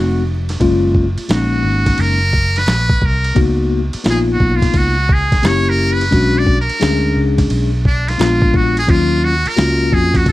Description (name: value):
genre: hip hop, jazz-hop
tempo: 87 BPM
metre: 4/4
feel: swing 66% on 16ths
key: F# major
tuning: A4 = 437 Hz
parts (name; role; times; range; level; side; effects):
- trumpet with metal mute; melody; 0.0-10.3 s; D4 to D5; -18 LUFS; right 1 dB; none
- mellow tine electric piano; accompaniment; 0.0-10.3 s; F#3 to G#4; -17 LUFS; left 3 dB; slow stereo tremolo
- vintage muted fingered electric bass; bass; 0.0-10.3 s; E#1 to E#2; -17 LUFS; equal; none
- boom bap sampler-style drum kit; drums; 0.5-10.3 s; hi-hat, kick drum, ride cymbal, snare drum; -18 LUFS; equal; none
room: digital ambience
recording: dark, warm production, vinyl crackle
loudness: -12 LUFS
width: side -17 dB against mid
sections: 0.6-10.3 A section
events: muted trumpet solo 0.6-10.3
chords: 0.0 G#7b9 (rootless); 0.6 F#maj9; 3.4 C#13sus4; 5.4 F#7b9; 6.1 Bm6; 8.2 A#7b9; 8.9 D#m9